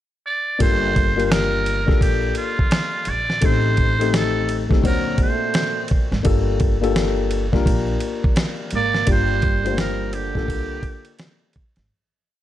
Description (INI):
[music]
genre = hip hop, jazz-hop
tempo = 85 BPM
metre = 4/4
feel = swing 62% on 16ths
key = G minor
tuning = A4 = 440 Hz
[part]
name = trumpet with metal mute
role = melody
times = 0.3-11.2 s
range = F4 to D5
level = -24 LUFS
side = right 3 dB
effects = none
[part]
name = dark concert grand piano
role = accompaniment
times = 0.6-11.6 s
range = Bb2 to C5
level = -24 LUFS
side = left 7 dB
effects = none
[part]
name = upright bass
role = bass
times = 0.6-11.9 s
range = G1 to D2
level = -24 LUFS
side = right 1 dB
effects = none
[part]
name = dusty soul sampler-style drum kit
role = drums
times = 0.6-11.9 s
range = hi-hat, kick drum, ride cymbal, snare drum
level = -21 LUFS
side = equal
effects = none
[part]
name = mellow trombone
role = second line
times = 4.8-11.2 s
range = D3 to Bb3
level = -29 LUFS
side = right 12 dB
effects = none
[sound]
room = light reverb, studio reverb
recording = dark, warm production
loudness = -17 LUFS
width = side -12 dB against mid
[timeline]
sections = 0.0-0.6 pickup bar; 0.6-11.9 A section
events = fade-out 9.1-11.9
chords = 0.0 N.C.; 0.6 Gm7; 3.4 Am7b5; 4.8 D7b13; 6.3 Gm7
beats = | 0.61 1.31 2.02 2.72 | 3.43 4.13 4.84 5.55 | 6.25 6.96 7.67 8.37 | 9.08 9.78 10.49 11.19